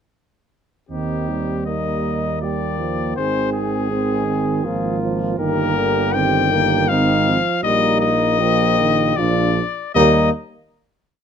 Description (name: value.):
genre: classical, brass quintet.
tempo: 79 BPM.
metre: 3/4.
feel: straight.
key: Eb major.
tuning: A4 = 439 Hz.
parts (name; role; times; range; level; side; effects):
clear trumpet; melody; 0.9-10.3 s; G4 to G5; -21 LUFS; left 7 dB; none.
mellow flugelhorn; second line; 0.9-10.3 s; Eb4 to Ab4; -25 LUFS; right 4 dB; none.
mellow trombone; accompaniment; 0.9-10.3 s; D3 to G3; -24 LUFS; right 4 dB; none.
warm French horn; accompaniment; 0.9-10.3 s; Bb3 to D4; -23 LUFS; left 4 dB; none.
mellow tuba; bass; 0.9-10.3 s; G1 to Eb2; -23 LUFS; right 4 dB; none.
room: moderate studio reverb, RT60 0.8 s.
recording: none.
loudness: -16 LUFS.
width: side -7 dB against mid.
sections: 0.9-10.0 A section; 10.0-11.2 final chord.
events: none.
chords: 0.9 Eb; 3.2 Ab; 4.6 Bb5/Ab; 5.4 Eb/G; 6.9 Fm7/Ab; 7.6 Bbsus4; 9.2 Bb; 10.0 Eb.